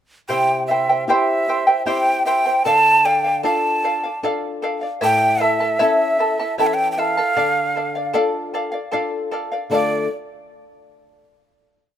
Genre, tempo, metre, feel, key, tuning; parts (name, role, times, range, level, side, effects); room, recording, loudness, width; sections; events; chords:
andean folk, Andean ensemble; 77 BPM; 3/4; straight; D minor; A4 = 440 Hz
breathy quena; melody; 0.3-10.1 s; D5 to A5; -18 LUFS; right 1 dB
charango; accompaniment; 0.3-10.0 s; E4 to A5; -20 LUFS; equal
flamenco guitar; accompaniment; 0.3-10.1 s; A2 to A4; -27 LUFS; left 4 dB
light reverb, small room reverb; rough home demo mix; -16 LUFS; side -10 dB against mid
0.3-9.7 A section; 9.7-12.0 final chord
0.3 C; 2.7 Dm; 5.0 A; 7.4 Dm